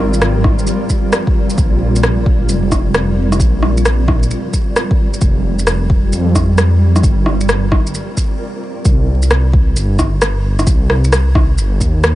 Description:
future garage; 132 BPM; 4/4; swing 65% on 16ths; A4 = 439 Hz
granular cloud pad; sustained chords; 0.0-8.4 s; G3 to D5; -20 LUFS; right 1 dB; built-in reverb, sidechain pumping
dark detuned saw bass; bass; 0.0-12.2 s; F1 to F2; -14 LUFS; equal; sidechain pumping
electronic shaker and rim click; drums; 0.1-12.2 s; -19 LUFS; equal; overdrive
electronic kick drum; drums; 0.4-11.9 s; -14 LUFS; equal; overdrive
little or no reverb; vinyl crackle, nothing above 10.5 kHz; -11 LUFS; side -15 dB against mid
0.0-8.9 A section; 8.9-12.2 B section
stop 8.4-8.9
0.0 Abadd9; 1.6 Fsus2; 7.0 Gsus4; 8.9 C5

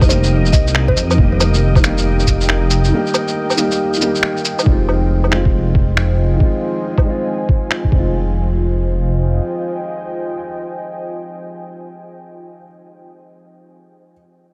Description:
future garage; 138 BPM; 4/4; swing 64% on 16ths; F minor; A4 = 440 Hz
dark upright piano; accompaniment; 0.0-14.1 s; Eb3 to G4; -23 LUFS; equal; sidechain pumping, low-pass filter, dub echo
deep dark ambient pad; sustained chords; 0.0-12.4 s; F4 to Ab5; -29 LUFS; equal; chorus, built-in reverb, sidechain pumping
dark detuned saw bass; bass; 0.0-9.4 s; F1 to F2; -18 LUFS; equal; sidechain pumping
electronic kick drum; drums; 0.0-8.0 s; -16 LUFS; equal; small room ambience
electronic shaker, woodblock, cabasa and finger snaps; drums; 0.0-7.8 s; -21 LUFS; equal; small room ambience
wind-like tuned noise texture; texture; 0.0-4.7 s; Eb5; -35 LUFS; equal; built-in reverb
mallet-like synth pluck; melody; 0.1-1.3 s; C5 to Eb5; -27 LUFS; equal; chorus, phaser, delay
light reverb, digital ambience; -16 LUFS; mono
0.0-4.7 A section; 4.7-8.1 B section; 8.1-11.6 C section
break 2.9-4.7
0.0 Eb/F; 4.7 Fm7

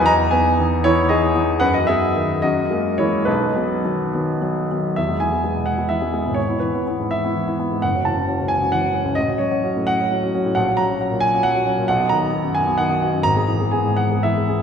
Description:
classical, romantic character piece for solo piano; 69-93 BPM (dotted quarters); 6/8; rubato; B major, E major from 5.0 s, B major from 10.6 s; A4 = 440 Hz
warm grand piano; solo; 0.0-14.6 s; F#1 to B5; -17 LUFS; equal
wet concert hall reverb, RT60 1.8 s; minimal, uncompressed stereo recording; -17 LUFS; side -7 dB against mid
0.0-5.0 A section; 5.0-14.6 B section
0.1 Emaj7; 1.6 B/F#; 2.4 F#9; 3.3 B; 5.0 E; 7.8 F#m7; 9.2 F#m/A; 10.6 F#/A#; 11.9 B; 13.2 E/G#

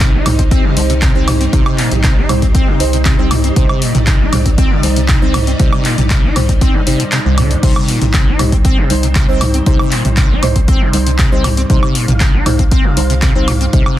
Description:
acid house; 118 BPM; 4/4; straight; C minor; A4 = 443 Hz
string machine, full ensemble; sustained chords; 0.0-14.0 s; G3 to F5; -21 LUFS; left 1 dB; ensemble chorus, sidechain pumping
liquid acid bass; riff; 0.0-14.0 s; C2 to Eb4; -18 LUFS; equal; tube saturation, ensemble chorus, analog delay
saturated sub bass; bass; 0.0-13.8 s; G1 to C2; -17 LUFS; equal; sidechain pumping
electronic kick drum; drums; 0.0-13.8 s; -13 LUFS; equal
punchy analog drum machine; drums; 0.0-14.0 s; crash cymbal, handclaps, hi-hat, toms, woodblock; -18 LUFS; equal
deep mellow chord stab; stabs; 0.3-13.9 s; G3 to C5; -21 LUFS; right 2 dB; chorus, phaser, analog delay
digital ambience; dense, heavily limited modern master; -10 LUFS; side -13 dB against mid
0.0-14.0 A section
kick drops out 7.1-7.6
0.0 Cm

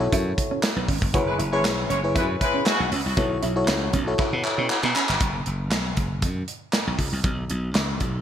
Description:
early-eighties boogie funk; 118 BPM; 4/4; straight; F# minor; A4 = 440 Hz
FM electric piano; accompaniment; 0.0-5.2 s; E4 to B5; -27 LUFS; left 2 dB; chorus
glassy slap bass; bass; 0.0-8.2 s; F#1 to B2; -26 LUFS; equal
mellow electric guitar; riff; 0.1-5.0 s; B3 to F#4; -32 LUFS; right 7 dB; lush chorus
modern studio drum kit; drums; 0.1-8.1 s; handclaps, hi-hat, kick drum, snare drum; -25 LUFS; equal; gated reverb
warm horn section; second line; 1.3-2.9 s; C#3 to C#5; -26 LUFS; left 1 dB; digital delay
light reverb, small room ambience; bright 1980s-style digital production; -21 LUFS; side -9 dB against mid
0.0-5.2 A section; 5.2-8.2 B section
drum fill 4.2-5.2; FM electric piano fill 4.2-5.2
0.0 B9sus4; 1.1 F#9sus4; 3.2 B9sus4; 5.2 F#sus4; 7.2 Bsus2

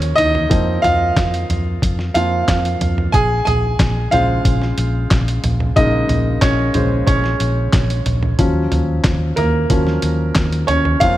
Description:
piano-driven pop; 91 BPM; 4/4; straight; Bb minor; A4 = 440 Hz
clear baby grand piano; accompaniment; 0.0-11.2 s; Db3 to Ab5; -18 LUFS; equal
vintage muted fingered electric bass; bass; 0.0-11.2 s; Bb1 to F2; -19 LUFS; equal
lo-fi sampler-style drum kit; drums; 0.0-11.2 s; handclaps, hi-hat, kick drum, snare drum, toms; -19 LUFS; equal; overdrive
light reverb; -14 LUFS; side -14 dB against mid
0.0-11.2 A section
grand piano solo 0.0-11.2
0.0 Ebm7; 0.5 Fsus4; 3.1 Bbm7; 8.4 Ebm7

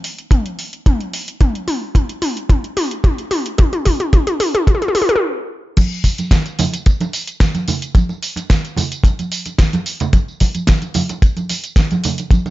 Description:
nu-disco; 110 BPM; 4/4; straight
pop drum kit; drums; 0.0-12.5 s; crash cymbal, hi-hat, snare drum, tambourine, toms; -20 LUFS; equal; studio reverb
kick drum; drums; 0.3-12.4 s; -12 LUFS; equal; studio reverb
congas; percussion; 5.8-12.5 s; -21 LUFS; right 3 dB
studio reverb; nothing above 7.6 kHz; -15 LUFS; side -16 dB against mid
0.0-5.8 A section; 5.8-12.5 B section
build-up 0.0-5.8; drum fill 0.0-5.2; stop 5.2-5.8; drop 5.8-12.5

